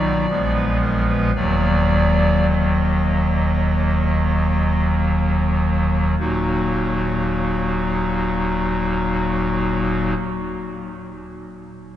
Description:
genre	classical, chorale-style piece for pipe organ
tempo	45-59 BPM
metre	4/4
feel	rubato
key	Eb minor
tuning	A4 = 439 Hz
part	pipe organ, clarinet reed	solo	0.0-10.1 s	Eb1 to Eb5	-18 LUFS	equal	none
room	wet cathedral reverb, RT60 5.7 s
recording	dark, warm production, nothing above 11.0 kHz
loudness	-17 LUFS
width	side -12 dB against mid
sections	0.0-6.2 A section; 6.2-11.3 B section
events	slowing down 0.0-6.2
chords	0.3 Bb5; 1.3 Ebm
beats	0.29 | 1.35 2.49 3.66 4.88 | 6.19 7.46 8.73 10.00

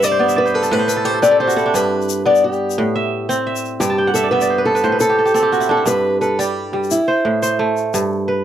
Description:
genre	west african traditional, West African string and xylophone music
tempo	116 BPM (dotted quarters)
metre	12/8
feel	straight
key	G major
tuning	A4 = 440 Hz
part	fingerpicked acoustic archtop guitar	melody	0.0-7.7 s	E4 to D5	-17 LUFS	left 1 dB	none
part	kora	arpeggios	0.0-8.4 s	G2 to A5	-17 LUFS	right 2 dB	none
part	tube shaker	percussion	0.0-8.0 s	none	-28 LUFS	left 13 dB	none
room	little or no reverb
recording	dry, close 1970s-style studio recording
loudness	-14 LUFS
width	side -10 dB against mid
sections	0.0-5.9 A section; 5.9-8.4 B section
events	kora fill 0.0-1.8, 3.9-5.9; steel-string acoustic guitar solo 0.0-5.9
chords	0.0 G; 0.7 Am; 1.8 G; 2.8 Am; 3.8 G; 4.8 Am; 5.9 G; 6.9 Am; 7.9 G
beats	0.20 0.72 1.24 | 1.75 2.27 2.78 3.30 | 3.81 4.33 4.85 5.36 | 5.88 6.39 6.91 7.43 | 7.94

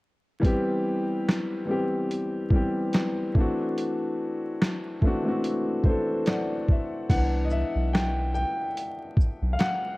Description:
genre	lo-fi hip hop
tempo	72 BPM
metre	4/4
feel	swing 55% on 16ths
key	unclear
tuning	A4 = 440 Hz
part	warm upright piano	accompaniment	0.4-10.0 s	E3 to G5	-26 LUFS	left 1 dB	low-pass filter
part	boom bap sampler-style drum kit	drums	0.4-9.8 s	crash cymbal, handclaps, hi-hat, kick drum, shaker, snare drum	-24 LUFS	equal	vintage 12-bit sampler grit
part	soft dub sub bass	bass	7.1-9.6 s	B1 to C2	-26 LUFS	equal	none
room	moderate spring reverb, RT60 2.5 s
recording	dark, warm production, vinyl crackle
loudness	-24 LUFS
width	side -21 dB against mid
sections	0.4-7.1 A section; 7.1-10.0 B section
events	upright piano fill 5.8-7.1; upright piano solo 7.1-10.0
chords	0.4 Cmaj7; 3.4 D9; 7.1 Cmaj7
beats	| 0.43 1.27 2.10 2.93 | 3.77 4.60 5.43 6.27 | 7.10 7.93 8.77 9.60

